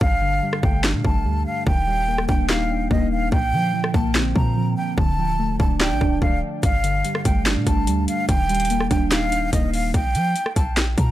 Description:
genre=hip hop, trap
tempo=145 BPM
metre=4/4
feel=half-time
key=unclear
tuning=A4 = 440 Hz
part: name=breathy jazz flute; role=melody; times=0.0-11.1 s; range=Eb5 to Bb5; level=-25 LUFS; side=equal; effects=dub echo
part: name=muted felt-like synth keys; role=accompaniment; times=0.0-10.0 s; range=G2 to D5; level=-25 LUFS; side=right 1 dB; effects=chorus, dub echo
part: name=clean 808-style bass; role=bass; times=0.0-11.1 s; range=D1 to F3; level=-24 LUFS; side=equal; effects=none
part: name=trap drum kit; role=drums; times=0.0-11.1 s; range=handclaps, hi-hat, kick drum, rim click, snare drum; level=-21 LUFS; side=equal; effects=none
room=little or no reverb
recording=echo-heavy mix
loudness=-18 LUFS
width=side -14 dB against mid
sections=0.0-11.1 A section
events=break 0.0-6.6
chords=0.0 Gsus2; 1.7 Ebmaj7; 3.3 Bbadd9; 5.0 Dm; 6.6 Gsus2; 8.3 Ebmaj7; 9.9 Bb5

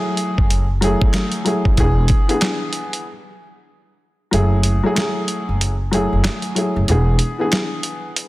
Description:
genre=hip hop, boom-bap hip-hop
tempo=94 BPM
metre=4/4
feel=swing 62% on 16ths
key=F# minor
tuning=A4 = 440 Hz
part: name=dark upright piano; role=accompaniment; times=0.0-8.3 s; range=E3 to G#4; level=-20 LUFS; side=left 1 dB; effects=cassette tape, high-pass filter, low-pass filter
part: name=dusty soul sampler-style drum kit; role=drums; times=0.2-8.3 s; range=handclaps, hi-hat, kick drum, snare drum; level=-19 LUFS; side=equal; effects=none
part: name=upright bass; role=bass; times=0.4-7.2 s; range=E1 to F#1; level=-18 LUFS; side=equal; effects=none
room=light reverb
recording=dense, heavily limited modern master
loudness=-16 LUFS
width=side -18 dB against mid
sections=0.0-4.3 A section; 4.3-8.3 B section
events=break 3.1-4.3; kick muted 4.3-8.3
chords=0.0 F#m9; 1.8 E7; 4.3 F#m9; 6.9 E7

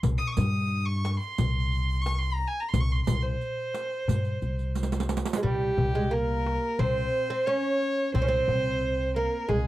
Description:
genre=Turkish makam ensemble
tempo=89 BPM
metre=4/4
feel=straight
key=C makam kurdi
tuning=A4 = 440 Hz
part: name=upright bass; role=bass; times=0.0-9.7 s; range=C2 to G2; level=-28 LUFS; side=equal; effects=none
part: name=darbuka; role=percussion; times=0.0-9.6 s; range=none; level=-32 LUFS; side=left 2 dB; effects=none
part: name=riq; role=percussion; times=0.0-5.4 s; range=none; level=-32 LUFS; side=right 7 dB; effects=none
part: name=rich violin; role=melody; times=0.2-9.7 s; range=G4 to Eb6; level=-30 LUFS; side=equal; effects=none
part: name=oud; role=second line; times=5.4-9.7 s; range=G3 to Db4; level=-29 LUFS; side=right 3 dB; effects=none
room=little or no reverb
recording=dry, close 1970s-style studio recording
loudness=-25 LUFS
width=side -15 dB against mid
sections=0.0-5.4 A section; 5.4-9.7 B section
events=drum fill 4.8-5.4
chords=none

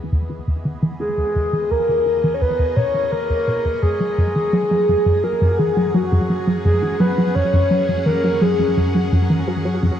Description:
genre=ambient, sequencer-driven space music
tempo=85 BPM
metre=4/4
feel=straight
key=unclear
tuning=A4 = 440 Hz
part: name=phased analog pad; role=sustained chords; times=0.0-10.0 s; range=E3 to F#5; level=-30 LUFS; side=equal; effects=phaser, chorus, shimmer reverb
part: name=plucky analog bass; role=riff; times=0.0-9.9 s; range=E2 to F#3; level=-19 LUFS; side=equal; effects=ensemble chorus, tape echo
part: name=analog drone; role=bass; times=0.1-10.0 s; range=E2 to F#2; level=-33 LUFS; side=equal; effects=none
part: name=soft octave-layered synth lead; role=melody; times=1.0-9.1 s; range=F#4 to C#5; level=-19 LUFS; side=left 1 dB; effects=chorus, phaser, shimmer reverb, tape echo
room=moderate plate reverb, RT60 3.0 s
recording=cassette tape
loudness=-16 LUFS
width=side -10 dB against mid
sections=0.0-10.0 A section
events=fade-in on analog synth pad 0.0-10.0; filter sweep on analog synth bass 0.0-10.0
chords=0.0 E; 3.8 F#sus2

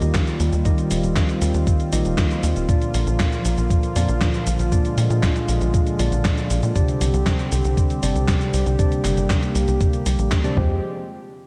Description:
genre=italo disco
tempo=118 BPM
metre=4/4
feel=straight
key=unclear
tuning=A4 = 438 Hz
part: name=warm analog pad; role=sustained chords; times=0.0-10.8 s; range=D3 to G4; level=-28 LUFS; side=equal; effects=chorus
part: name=tine electric piano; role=stabs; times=0.0-10.8 s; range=Bb2 to Eb5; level=-28 LUFS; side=equal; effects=low-pass filter, analog delay
part: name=tight sequencer bass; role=bass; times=0.0-10.8 s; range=Eb1 to Bb2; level=-23 LUFS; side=equal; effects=none
part: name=gated 80s digital drum machine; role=drums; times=0.0-10.5 s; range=cabasa, handclaps, hi-hat, snare drum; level=-30 LUFS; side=equal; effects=gated reverb, gated reverb snare
part: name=electronic kick drum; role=drums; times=0.1-10.7 s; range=none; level=-23 LUFS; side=equal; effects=none
room=moderate lush hall reverb, RT60 1.9 s, digital ambience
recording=dreamy mix soaked in reverb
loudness=-20 LUFS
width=mono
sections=0.0-10.8 A section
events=none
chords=0.0 Ebadd9; 2.7 Bb; 6.8 Csus2; 10.6 Fmadd9; 10.8 N.C.

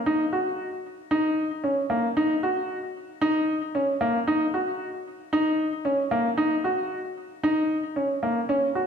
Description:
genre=electronica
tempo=114 BPM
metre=4/4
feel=straight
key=Eb minor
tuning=A4 = 440 Hz
part: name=warm upright piano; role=solo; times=0.1-8.9 s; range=Bb3 to Gb4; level=-23 LUFS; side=equal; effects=ping-pong delay
room=wet recital hall reverb, RT60 1.4 s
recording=none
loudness=-23 LUFS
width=side -7 dB against mid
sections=0.0-8.9 A section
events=none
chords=none

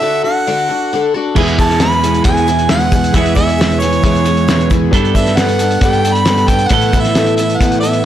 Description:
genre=folk rock and heartland rock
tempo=135 BPM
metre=4/4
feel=straight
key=unclear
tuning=A4 = 440 Hz
part: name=clear harmonica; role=melody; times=0.0-8.1 s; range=C#5 to B5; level=-16 LUFS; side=right 2 dB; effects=slapback echo
part: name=picked twelve-string acoustic guitar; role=accompaniment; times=0.0-8.1 s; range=E2 to A4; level=-18 LUFS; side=left 5 dB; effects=none
part: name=warm grand piano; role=accompaniment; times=1.4-7.9 s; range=E4 to E5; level=-27 LUFS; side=left 5 dB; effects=none
part: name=twelve-string electric guitar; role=riff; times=1.4-8.1 s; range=E2 to A4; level=-17 LUFS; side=right 7 dB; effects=none
part: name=fingered electric bass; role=bass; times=1.4-8.1 s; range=E2 to A2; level=-19 LUFS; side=left 1 dB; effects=none
part: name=cloth-damped thuddy drum kit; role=drums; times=1.4-8.0 s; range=crash cymbal, hi-hat, kick drum, snare drum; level=-16 LUFS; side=equal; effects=none
part: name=egg shaker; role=percussion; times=1.4-8.0 s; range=none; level=-38 LUFS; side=left 9 dB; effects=none
room=light reverb, small room ambience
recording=blown-out, overdriven recording, overdrive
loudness=-10 LUFS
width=side -11 dB against mid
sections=0.0-8.1 A section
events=none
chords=0.0 D; 1.4 E; 4.9 Gadd9; 6.7 Asus2

